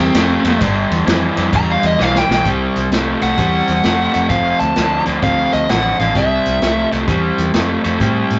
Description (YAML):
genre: electric blues shuffle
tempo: 130 BPM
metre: 4/4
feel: swing 64% on 8ths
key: C major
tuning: A4 = 441 Hz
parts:
  - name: biting lead guitar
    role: melody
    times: 0.0-6.9 s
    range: C4 to Bb5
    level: -19 LUFS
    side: equal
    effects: overdrive
  - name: crunchy overdriven guitar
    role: riff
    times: 0.0-8.4 s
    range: F2 to A3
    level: -19 LUFS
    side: equal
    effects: none
  - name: vintage muted fingered electric bass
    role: bass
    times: 0.0-8.4 s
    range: F1 to A2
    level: -24 LUFS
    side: equal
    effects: none
  - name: warm soul drum kit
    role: drums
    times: 0.1-8.4 s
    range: hi-hat, kick drum, ride cymbal, snare drum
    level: -23 LUFS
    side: equal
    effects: none
room: moderate small room reverb, RT60 0.5 s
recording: rough rehearsal-room recording, tube saturation, nothing above 7.7 kHz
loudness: -16 LUFS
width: mono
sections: 0.0-2.5 A section; 2.5-8.4 B section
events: lead electric guitar solo 0.0-2.5; drum fill 2.0-2.5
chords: 0.0 C; 0.6 G; 2.5 C; 4.3 F; 6.2 C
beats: 0.15 | 0.61 1.08 1.54 2.00 | 2.46 2.92 3.38 3.85 | 4.31 4.77 5.23 5.70 | 6.16 6.62 7.08 7.54 | 8.00